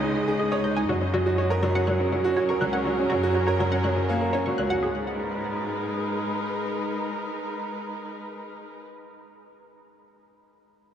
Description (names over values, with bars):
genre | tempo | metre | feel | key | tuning
piano and strings electronica | 122 BPM | 4/4 | straight | G# minor | A4 = 439 Hz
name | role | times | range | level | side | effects
muted chamber string section | sustained chords | 0.0-8.9 s | C#3 to D#5 | -29 LUFS | equal | none
clear upright piano | riff | 0.0-10.9 s | F#3 to C#5 | -26 LUFS | right 1 dB | tape echo
rich symphonic cello section | bass | 0.0-6.3 s | C#2 to G#2 | -29 LUFS | equal | none
analog pluck | arpeggios | 0.4-5.1 s | F#4 to G6 | -32 LUFS | right 1 dB | chorus, tape echo
room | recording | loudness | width
wet cathedral reverb, RT60 5.9 s | dreamy mix soaked in reverb | -23 LUFS | side -9 dB against mid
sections
0.0-4.8 A section; 4.8-8.8 B section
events
drop 0.0-4.8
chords
0.0 C#sus2; 0.9 F#; 4.8 G#madd9